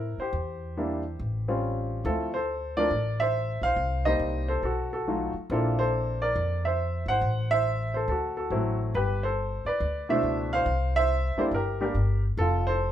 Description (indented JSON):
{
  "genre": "jazz piano trio",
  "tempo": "140 BPM",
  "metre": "4/4",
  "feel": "swing 65% on 8ths",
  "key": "D minor",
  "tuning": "A4 = 439 Hz",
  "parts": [
    { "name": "warm upright piano", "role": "melody", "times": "0.0-12.9 s", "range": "B2 to F#5", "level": "-27 LUFS", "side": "equal", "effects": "none" },
    { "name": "upright bass", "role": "bass", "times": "0.0-12.9 s", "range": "F1 to A2", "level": "-29 LUFS", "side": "equal", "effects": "none" }
  ],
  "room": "light reverb",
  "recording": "minimal, uncompressed stereo recording",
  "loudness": "-25 LUFS",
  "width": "side -11 dB against mid",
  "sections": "0.0-2.1 A section; 2.1-12.9 B section",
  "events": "none",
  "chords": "0.3 Em7b5; 1.2 A7alt; 2.1 Dm7; 3.8 Cm7; 4.6 B7#11; 5.5 Bbmaj9#11; 7.2 Am; 8.1 D7; 8.9 G6; 10.7 C7; 12.4 F"
}